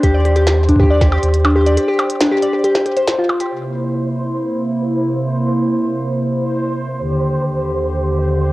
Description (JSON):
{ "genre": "IDM", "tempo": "138 BPM", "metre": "4/4", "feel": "straight", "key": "unclear", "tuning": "A4 = 441 Hz", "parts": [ { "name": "harp-like synth pluck", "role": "arpeggios", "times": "0.0-3.5 s", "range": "D4 to D5", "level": "-15 LUFS", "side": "left 1 dB", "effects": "chorus, cassette tape, tape echo" }, { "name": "warm sub bass", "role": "bass", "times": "0.0-1.8 s", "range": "Eb2", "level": "-14 LUFS", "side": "equal", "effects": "none" }, { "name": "electronic kick drum", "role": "drums", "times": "0.0-1.1 s", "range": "none", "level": "-14 LUFS", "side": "equal", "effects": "overdrive, cassette tape" }, { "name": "glitchy drum kit", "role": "drums", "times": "0.0-3.5 s", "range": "hi-hat, percussion blips, snare drum", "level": "-21 LUFS", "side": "equal", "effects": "overdrive, cassette tape, tape echo" }, { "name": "bubbling stepped-filter texture", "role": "texture", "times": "0.0-8.5 s", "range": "C5", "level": "-25 LUFS", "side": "right 1 dB", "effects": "chorus, built-in reverb, cassette tape" }, { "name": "hollow soft pad", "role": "sustained chords", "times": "3.5-8.5 s", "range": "Eb2 to G4", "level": "-17 LUFS", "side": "right 1 dB", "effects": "chorus, cassette tape" } ], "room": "light reverb", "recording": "home recording on cassette", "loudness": "-14 LUFS", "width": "side -18 dB against mid", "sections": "0.0-3.5 A section; 3.5-8.5 B section", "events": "break 1.8-3.5", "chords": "0.0 Ebmaj7; 3.5 C7; 7.0 Ebmaj7" }